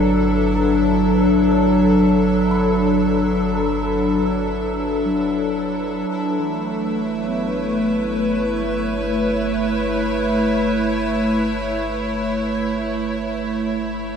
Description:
ambient; free time; A4 = 440 Hz
evolving wavetable pad; sustained chords; 0.0-14.2 s; F#3 to C#5; -18 LUFS; equal; chorus, built-in reverb
kalimba; arpeggios; 0.0-12.8 s; E3 to B5; -33 LUFS; right 1 dB
warm sub bass; bass; 0.0-14.2 s; G1; -30 LUFS; right 1 dB
clear studio violin section; texture; 0.0-14.2 s; E4 to E5; -32 LUFS; equal
wet huge ambient reverb, RT60 7.9 s; dark, warm production; -17 LUFS; side -7 dB against mid
0.0-14.2 A section
fade-in on violin section 0.0-14.2; fade-out on sub bass 0.0-14.2; fade-out 10.9-14.2
0.0 Gmaj7; 6.1 A/G

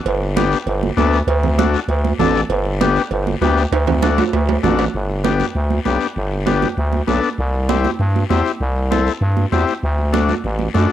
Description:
latin, cumbia; 196 BPM; 4/4; straight; G major; A4 = 439 Hz
growling FM bass; bass; 0.1-10.9 s; G1 to G2; -18 LUFS; equal
cowbell and timbales; percussion; 0.1-4.9 s; -23 LUFS; right 8 dB
guiro; percussion; 0.1-10.9 s; -34 LUFS; left 10 dB
congas; percussion; 0.2-10.9 s; -22 LUFS; right 8 dB
combo organ; accompaniment; 0.4-10.9 s; A3 to A4; -20 LUFS; left 7 dB; cassette tape
light reverb; home recording on cassette; -15 LUFS; side -11 dB against mid
0.0-4.9 A section; 4.9-10.9 B section
drum fill 3.7-4.9
0.1 G; 1.3 D; 2.5 G; 3.7 D; 4.9 G; 7.4 C; 9.8 D

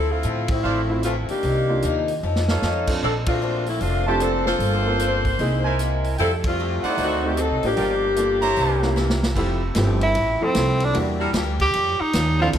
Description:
jazz, big band swing; 151 BPM; 4/4; swing 65% on 8ths; F major; A4 = 439 Hz
warm saxophone section; melody; 0.0-9.2 s; Eb3 to C5; -23 LUFS; left 2 dB
picked acoustic archtop guitar; accompaniment; 0.0-12.6 s; G2 to C5; -30 LUFS; left 5 dB
upright bass; bass; 0.0-12.6 s; F1 to A2; -24 LUFS; right 1 dB
vintage drum kit; drums; 0.2-12.6 s; crash cymbal, hi-hat, kick drum, ride cymbal, snare drum; -28 LUFS; equal
clear trumpet section; stabs; 0.6-8.9 s; D4 to Bb5; -27 LUFS; right 3 dB
clear upright piano; accompaniment; 0.9-12.5 s; F3 to C5; -28 LUFS; right 2 dB
clear saxophone section; sustained chords; 9.3-12.5 s; E#3 to B#4; -30 LUFS; equal
clear tenor saxophone; melody; 10.0-12.5 s; C4 to G4; -21 LUFS; right 1 dB
moderate concert hall reverb, RT60 1.9 s; -19 LUFS; side -9 dB against mid
0.0-9.4 A section; 9.4-12.6 B section
band accent 0.4, 3.2, 6.4; drum fill 2.2-2.6, 9.0-9.4; tenor saxophone solo 9.4-12.6
0.0 Dm9; 1.4 Cm11; 2.2 F7b13; 3.0 Bbmaj9; 4.6 Gm11; 5.4 C7alt; 6.2 Fmaj9; 7.0 D7b9; 7.8 Gm7; 8.6 C7b9; 9.4 Fmaj9; 11.0 Em7b5; 11.7 A7alt

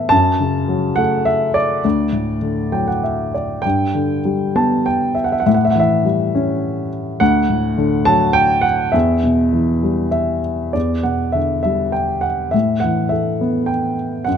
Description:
classical, lyrical solo piano; 102 BPM; 3/4; uneven beats, rubato; E dorian; A4 = 440 Hz
dark baby grand piano; solo; 0.0-14.4 s; D2 to A5; -15 LUFS; equal
light reverb; close, detailed microphones; -15 LUFS; side -8 dB against mid
0.0-10.8 A section; 10.8-14.4 B section
grand piano fill 2.4-3.6
0.1 F#m; 1.8 D; 3.6 G; 5.5 A7; 7.2 D; 8.9 Em; 10.8 Em7; 12.5 Asus2

